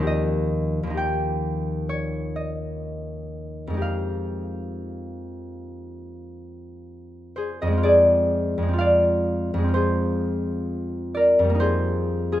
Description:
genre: classical, solo harp piece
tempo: 58-66 BPM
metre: 4/4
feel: rubato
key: F minor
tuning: A4 = 439 Hz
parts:
  - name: concert harp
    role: solo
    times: 0.0-12.4 s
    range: Eb2 to Ab5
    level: -21 LUFS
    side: equal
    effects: none
room: moderate recital hall reverb, RT60 1.5 s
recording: close, detailed microphones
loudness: -21 LUFS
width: side -13 dB against mid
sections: 0.0-7.9 A section; 7.9-12.4 A section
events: none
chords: 0.1 Ebadd9; 3.8 Fm9; 7.9 Fm6; 11.6 Ebadd9/F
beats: | 0.06 0.98 1.90 2.83 | 3.81 4.82 5.84 6.85 | 7.85 8.79 9.74 10.69 | 11.61

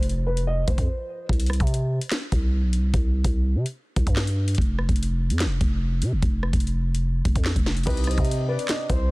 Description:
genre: hip hop, drill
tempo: 146 BPM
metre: 4/4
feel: half-time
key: C harmonic minor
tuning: A4 = 438 Hz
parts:
  - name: dark baby grand piano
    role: accompaniment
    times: 0.0-1.3, 7.9-9.1 s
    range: C3 to C5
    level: -36 LUFS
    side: right 1 dB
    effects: none
  - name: growling 808-style bass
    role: bass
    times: 0.0-9.1 s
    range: F1 to C3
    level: -23 LUFS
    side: equal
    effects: none
  - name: drill drum kit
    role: drums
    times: 0.0-9.0 s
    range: crash cymbal, handclaps, hi-hat, kick drum, rim click, snare drum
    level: -24 LUFS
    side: equal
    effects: vintage 12-bit sampler grit
  - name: dark concert grand piano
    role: melody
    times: 0.3-1.3, 7.9-9.1 s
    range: B4 to Eb5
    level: -32 LUFS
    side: equal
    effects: tape echo
  - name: soft octave-layered synth lead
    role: second line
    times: 7.9-9.1 s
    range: C5 to Eb5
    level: -32 LUFS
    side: left 1 dB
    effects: chorus, phaser, tape echo
room: little or no reverb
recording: dense, heavily limited modern master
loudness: -21 LUFS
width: side -23 dB against mid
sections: 0.0-7.9 A section; 7.9-9.1 B section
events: break 0.9-1.3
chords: 0.0 Fm; 1.3 C5; 4.6 F5; 7.9 Cm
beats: 0.06 0.47 0.88 | 1.29 1.70 2.12 2.53 | 2.94 3.35 3.76 4.17 | 4.58 4.99 5.40 5.81 | 6.22 6.64 7.05 7.46 | 7.87 8.28 8.69 9.10

